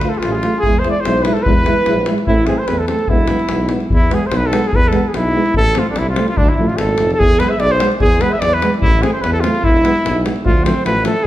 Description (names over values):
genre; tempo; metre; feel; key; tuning
balkan folk, Balkan brass band; 147 BPM; 2/4; swing 55% on 16ths; E phrygian dominant; A4 = 440 Hz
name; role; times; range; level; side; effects
mellow trumpet; melody; 0.0-11.3 s; D4 to E5; -18 LUFS; equal; none
clear alto saxophone; second line; 0.0-3.7, 6.4-11.3 s; F3 to E5; -21 LUFS; right 2 dB; tape echo
dark euphonium; accompaniment; 0.0-11.1 s; F3 to A3; -23 LUFS; right 3 dB; none
warm trombone; accompaniment; 0.0-11.1 s; A3 to F4; -24 LUFS; left 4 dB; none
warm tuba; bass; 0.0-11.1 s; E1 to E2; -20 LUFS; equal; none
davul; percussion; 0.0-11.2 s; none; -18 LUFS; left 1 dB; none
room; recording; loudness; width
wet recital hall reverb, RT60 1.4 s; heard from further back in the room; -12 LUFS; side -14 dB against mid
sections
0.0-3.9 A section; 3.9-10.4 A section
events
none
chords
0.0 Dm (rootless); 0.6 E; 2.3 Am; 3.1 E; 5.6 Am; 6.4 Dm; 7.2 E; 8.8 Am; 9.6 E; 10.4 Dm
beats
0.24 | 0.65 1.06 | 1.47 1.88 | 2.29 2.70 | 3.10 3.51 | 3.92 4.33 | 4.74 5.15 | 5.55 5.96 | 6.37 6.78 | 7.18 7.59 | 8.00 8.40 | 8.81 9.22 | 9.62 10.03 | 10.43 10.84 | 11.24